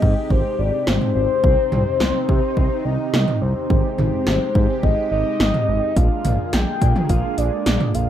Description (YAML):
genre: synth-pop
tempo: 106 BPM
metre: 4/4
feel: straight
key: unclear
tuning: A4 = 441 Hz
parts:
  - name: soft octave-layered synth lead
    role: melody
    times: 0.0-8.1 s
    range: C5 to G5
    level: -22 LUFS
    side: left 2 dB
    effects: chorus, phaser, ping-pong delay
  - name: mellow synth brass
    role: accompaniment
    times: 0.0-8.1 s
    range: Ab3 to G4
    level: -27 LUFS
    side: right 1 dB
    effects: chorus, phaser
  - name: lush unison pad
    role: sustained chords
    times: 0.0-8.1 s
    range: C3 to Ab4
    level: -32 LUFS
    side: right 1 dB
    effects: chorus, phaser
  - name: smooth synth bass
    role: bass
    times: 0.0-8.1 s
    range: Ab1 to C3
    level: -21 LUFS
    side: equal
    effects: none
  - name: 80s electronic pad drums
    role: drums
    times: 0.0-8.1 s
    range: hi-hat, kick drum, snare drum, toms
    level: -20 LUFS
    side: equal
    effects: gated reverb on snare and toms
room: light reverb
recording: rough home demo mix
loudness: -17 LUFS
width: side -10 dB against mid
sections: 0.0-8.1 A section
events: none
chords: 0.0 Abmaj7; 1.4 Cm; 3.7 Abmaj7; 6.0 Bb7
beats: 0.30 0.87 | 1.44 2.00 2.57 3.13 | 3.70 4.27 4.83 5.40 | 5.96 6.53 7.10 7.66